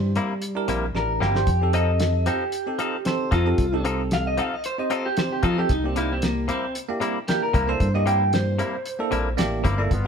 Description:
straight-eighth soul blues; 114 BPM; 4/4; straight; C mixolydian; A4 = 440 Hz
electric guitar through a small old amp; melody; 0.0-9.4 s; G3 to G5; -25 LUFS; equal
bell-like tine electric piano; accompaniment; 0.0-10.1 s; Bb3 to C5; -29 LUFS; right 4 dB; medium stereo tremolo
fingered electric bass; bass; 0.0-10.1 s; G1 to F3; -24 LUFS; equal
direct-recorded clean electric guitar; stabs; 0.2-9.8 s; C3 to A4; -28 LUFS; left 4 dB
cloth-damped thuddy drum kit; drums; 0.2-10.0 s; hi-hat, kick drum, snare drum; -26 LUFS; equal
brilliant horn section; sustained chords; 9.9-10.1 s; F3 to F4; -31 LUFS; left 2 dB
moderate studio reverb, RT60 0.9 s; band playing live in one room; -21 LUFS; side -6 dB against mid
0.0-10.1 A section
clean electric guitar solo 0.0-10.1; drum fill 1.0-1.5
0.0 C7; 1.5 F7; 5.7 C7

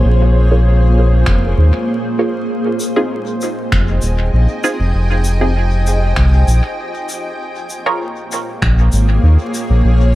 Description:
ambient dub; 98 BPM; 4/4; straight; F minor; A4 = 441 Hz
granular cloud pad; sustained chords; 0.0-10.2 s; Bb3 to Ab5; -20 LUFS; equal; built-in reverb
round analog bass; bass; 0.0-10.2 s; Eb1 to Eb2; -11 LUFS; equal
filtered dub chord stab; stabs; 0.5-8.1 s; C4 to Db5; -20 LUFS; right 1 dB; phaser, vintage 12-bit sampler grit, dub echo
electronic kick drum; drums; 1.3-8.7 s; -19 LUFS; equal
finger snaps and shaker; drums; 1.3-9.7 s; -26 LUFS; equal; dub echo
small room ambience; vinyl crackle; -12 LUFS; side -16 dB against mid
0.0-10.2 A section
filter sweep on synth stab 0.0-10.2
0.0 Bbm7; 2.5 Fm7; 7.4 Bbm7

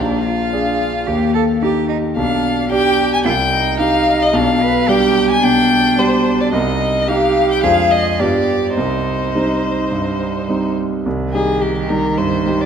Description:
quick classical-period movement for piano trio; 109 BPM; 4/4; rubato; C minor; A4 = 439 Hz
rich violin; melody; 0.0-12.7 s; G4 to Ab5; -18 LUFS; left 4 dB
rich cello; second line; 0.0-12.7 s; Eb3 to B4; -21 LUFS; right 8 dB
warm concert grand piano; accompaniment; 0.0-12.7 s; Bb1 to Ab4; -17 LUFS; equal
moderate concert hall reverb, RT60 2.2 s; -14 LUFS; side -7 dB against mid
0.0-11.1 A section; 11.1-12.7 B section
0.0 Bb7; 1.1 Eb; 2.2 G7/B; 3.2 Cm; 4.3 G7/B; 6.5 Cm; 7.6 Ddim/F; 8.2 G7; 8.8 Cm

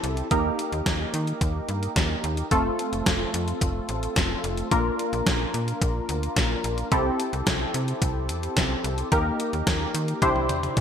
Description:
synth-pop; 109 BPM; 4/4; straight; F major; A4 = 440 Hz
funky polysynth comp; accompaniment; 0.0-10.8 s; A3 to C5; -26 LUFS; equal; chorus
slap-like FM bass; bass; 0.0-10.8 s; F1 to Eb3; -29 LUFS; equal
gated 80s digital drum machine; drums; 0.0-10.8 s; hi-hat, kick drum, snare drum, toms; -26 LUFS; equal; gated reverb, gated reverb snare, overdrive
moderate plate reverb, RT60 2.2 s; bright 1980s-style digital production; -23 LUFS; side -8 dB against mid
0.0-10.8 A section
drum fill 10.2-10.8
0.3 Eb; 2.5 F; 4.7 Bb; 6.9 C6; 9.1 Eb; 10.2 Cadd9

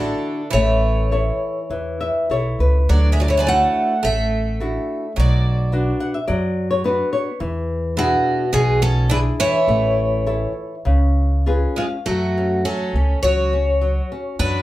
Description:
fado-style ballad; 96-108 BPM; 4/4; rubato; A major; A4 = 440 Hz
picked twelve-string acoustic guitar; melody; 0.0-14.6 s; E#4 to G#5; -21 LUFS; equal; plate reverb
picked twelve-string acoustic guitar; second line; 0.0-14.6 s; B2 to F#4; -26 LUFS; right 3 dB
flamenco guitar; accompaniment; 0.0-14.6 s; B2 to F#5; -23 LUFS; left 2 dB
upright bass; bass; 0.0-14.6 s; A1 to F#2; -19 LUFS; equal
wet studio reverb, RT60 0.5 s; heard from further back in the room; -17 LUFS; side -16 dB against mid
0.0-12.1 A section; 12.1-14.6 B section
nylon-string guitar fill 1.7-2.9, 5.7-7.4, 11.2-12.1
0.0 Dadd9; 0.5 A; 2.9 Dadd9; 5.2 Bm; 7.4 E7; 9.7 A; 10.9 C#7; 12.1 F#m

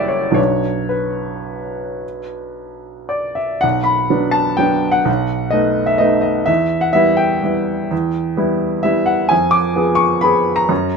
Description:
classical, piano waltz; 106-136 BPM; 3/4; rubato; B minor; A4 = 440 Hz
warm upright piano; solo; 0.0-11.0 s; F#1 to D6; -15 LUFS; equal
little or no reverb; close, detailed microphones; -14 LUFS; side -5 dB against mid
0.0-3.6 A section; 3.6-11.0 B section
0.4 Bm; 5.1 B7; 6.5 Em; 9.3 Fdim7

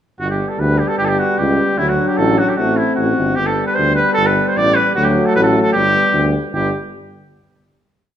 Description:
balkan folk, Balkan brass band; 152 BPM; 2/4; straight; G major; A4 = 440 Hz
warm trumpet; melody; 0.2-6.7 s; E4 to D5; -17 LUFS; equal
clear trombone; accompaniment; 0.2-6.7 s; F#3 to A3; -21 LUFS; right 2 dB
mellow euphonium; accompaniment; 0.2-6.7 s; A3 to D4; -22 LUFS; left 6 dB
warm tuba; bass; 0.2-6.7 s; G1 to D2; -19 LUFS; equal
wet recital hall reverb, RT60 1.3 s; minimal, uncompressed stereo recording; -13 LUFS; side -10 dB against mid
0.2-6.5 A section; 6.5-7.3 final chord
0.2 G; 1.8 D; 2.6 Am; 3.4 G; 5.0 D; 5.7 G

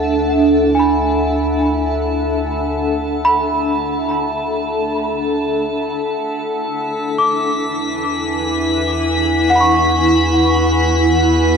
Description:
ambient; free time; D lydian; A4 = 437 Hz
granular cloud pad; sustained chords; 0.0-11.6 s; D4 to G#5; -16 LUFS; equal; built-in reverb
worn celesta; arpeggios; 0.0-11.6 s; F#5 to D6; -20 LUFS; equal; diffuse ambient delay
deep rumbling drone; bass; 0.0-11.6 s; D2 to E2; -24 LUFS; left 1 dB; built-in reverb
drifting glass-harmonics texture; texture; 0.0-11.6 s; A5 to B6; -24 LUFS; left 1 dB; chorus, built-in reverb
wet huge ambient reverb, RT60 8.2 s; cassette tape; -14 LUFS; side -6 dB against mid
0.0-11.6 A section
fade-in on synth texture 0.0-11.6
0.0 D; 6.7 Eadd9

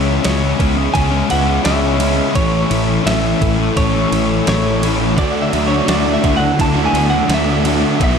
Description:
rock, shoegaze and dream pop; 85 BPM; 4/4; straight; A4 = 440 Hz
direct-recorded clean electric guitar; melody; 0.0-8.2 s; C#5 to A5; -21 LUFS; equal; spring reverb, analog delay
picked plugged-in twelve-string acoustic guitar; arpeggios; 0.0-8.2 s; E3 to A4; -26 LUFS; right 8 dB; lush chorus, analog delay
distorted electric guitar; riff; 0.0-8.2 s; A2 to E4; -22 LUFS; equal; distortion
thick fuzz guitar; riff; 0.0-8.2 s; A2 to D4; -19 LUFS; left 10 dB; distortion, lush chorus
fuzz fingered electric bass; bass; 0.0-8.2 s; A1 to D2; -19 LUFS; right 1 dB; overdrive
crisp 8-bit digital drum machine; drums; 0.2-8.2 s; kick drum, ride cymbal, snare drum; -22 LUFS; right 1 dB; overdrive
overdriven semi-hollow guitar; riff; 5.2-8.2 s; B2 to F#4; -21 LUFS; right 10 dB; reverse reverb
light reverb; -13 LUFS; side -6 dB against mid
0.0-8.2 A section
0.0 C#m7; 2.4 Amaj7; 5.2 D69

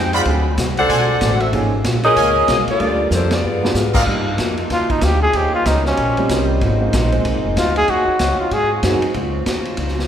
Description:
jazz, big band swing; 189 BPM; 4/4; swing 61% on 8ths; C minor from 4.1 s; A4 = 441 Hz
warm saxophone section; melody; 0.0-3.8 s; A3 to F#5; -17 LUFS; equal
picked acoustic archtop guitar; accompaniment; 0.0-10.0 s; G2 to C5; -26 LUFS; left 2 dB
warm concert grand piano; accompaniment; 0.0-9.0 s; F3 to G5; -24 LUFS; right 3 dB
upright bass; bass; 0.0-10.1 s; F1 to Ab2; -20 LUFS; equal
bright trumpet section; stabs; 0.1-4.0 s; C4 to B5; -24 LUFS; right 1 dB
vintage drum kit; drums; 0.1-10.1 s; crash cymbal, hi-hat, kick drum, ride cymbal, snare drum; -23 LUFS; equal
warm saxophone section; sustained chords; 4.1-10.1 s; Eb3 to C5; -26 LUFS; left 2 dB
warm trumpet; melody; 4.7-8.7 s; Db4 to Ab4; -18 LUFS; equal
wet concert hall reverb, RT60 2.2 s; recorded in a church or concert hall; -14 LUFS; side -9 dB against mid
0.0-4.1 A section; 4.1-10.1 B section
drum fill 3.1-3.7; band accent 3.3; trumpet solo 4.1-10.1
0.3 D7#11; 1.5 Db6; 2.8 Gm7; 3.4 G7b9; 4.1 Cm11; 5.3 Eb13; 6.6 Ab6; 7.9 Ebm9; 8.5 Ab7; 9.1 Dbmaj9

